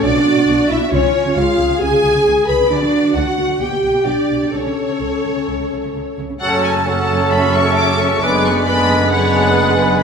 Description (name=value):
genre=classical, dramatic, fast romantic movement for symphony orchestra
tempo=133 BPM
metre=4/4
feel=straight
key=F# minor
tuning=A4 = 440 Hz
part: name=rich symphonic violin section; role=melody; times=0.0-10.0 s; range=C#5 to D6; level=-23 LUFS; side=left 3 dB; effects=none
part: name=warm symphonic violin section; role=second line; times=0.0-10.0 s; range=B4 to B5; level=-24 LUFS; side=left 1 dB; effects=none
part: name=warm symphonic viola section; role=accompaniment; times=0.0-10.0 s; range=B3 to A4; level=-23 LUFS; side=right 2 dB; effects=none
part: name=dark French horn section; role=sustained chords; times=0.0-10.0 s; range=A3 to B4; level=-18 LUFS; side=left 1 dB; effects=none
part: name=dark symphonic cello section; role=bass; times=0.0-10.0 s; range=F#2 to D3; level=-25 LUFS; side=right 4 dB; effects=none
part: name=warm symphonic double bass section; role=bass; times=0.0-10.0 s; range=F#1 to D2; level=-23 LUFS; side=right 2 dB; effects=none
part: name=clear clarinet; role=second line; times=6.4-10.0 s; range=C#4 to D4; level=-23 LUFS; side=left 1 dB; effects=none
part: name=clear oboe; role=second line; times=6.4-10.0 s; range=A4 to B4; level=-24 LUFS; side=right 1 dB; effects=none
part: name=large flute ensemble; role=second line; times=6.4-10.0 s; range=G#5 to A5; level=-23 LUFS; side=left 1 dB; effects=none
part: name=dark bassoon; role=accompaniment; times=6.4-10.0 s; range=F#3 to G#3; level=-23 LUFS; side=right 2 dB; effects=none
part: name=clear trombone section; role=sustained chords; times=6.4-10.0 s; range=C#3 to G#3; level=-26 LUFS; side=right 2 dB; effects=none
part: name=mellow trumpet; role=stabs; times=6.4-10.0 s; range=B4 to C#5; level=-22 LUFS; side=equal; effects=none
room=wet scoring stage reverb, RT60 1.6 s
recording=minimal, uncompressed stereo recording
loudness=-13 LUFS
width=side -6 dB against mid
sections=0.0-6.4 A section; 6.4-10.0 B section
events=none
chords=0.0 Bmadd11; 0.9 C#; 2.7 D; 3.6 G/B; 4.5 A/C#; 6.4 F#m; 8.2 G#m7b5/F#